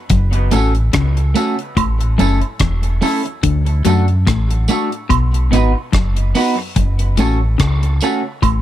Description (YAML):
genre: dub reggae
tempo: 72 BPM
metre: 4/4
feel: swing 56% on 16ths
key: F# minor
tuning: A4 = 440 Hz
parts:
  - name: clean electric guitar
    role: riff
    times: 0.1-8.6 s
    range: E2 to F#3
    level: -22 LUFS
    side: left 7 dB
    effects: dub echo
  - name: deep dub fingered electric bass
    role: bass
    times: 0.1-8.6 s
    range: E1 to F#2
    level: -15 LUFS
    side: equal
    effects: none
  - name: deep reggae drum kit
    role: drums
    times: 0.1-8.6 s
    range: hi-hat, kick drum, rim click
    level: -19 LUFS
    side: equal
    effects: none
  - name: clean electric guitar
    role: accompaniment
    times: 0.5-8.2 s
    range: A3 to B4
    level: -20 LUFS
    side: right 2 dB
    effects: wide subtle chorus, dub echo
  - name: tambourine and woodblock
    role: percussion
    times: 0.5-8.6 s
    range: none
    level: -25 LUFS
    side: right 10 dB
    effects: dub echo
room: small room ambience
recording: none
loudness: -13 LUFS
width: side -12 dB against mid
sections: 0.0-8.6 A section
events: none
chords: 0.1 F#m; 1.8 A; 3.4 D; 5.1 B; 6.8 F#m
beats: | 0.10 0.94 1.77 2.60 | 3.43 4.27 5.10 5.93 | 6.76 7.60 8.43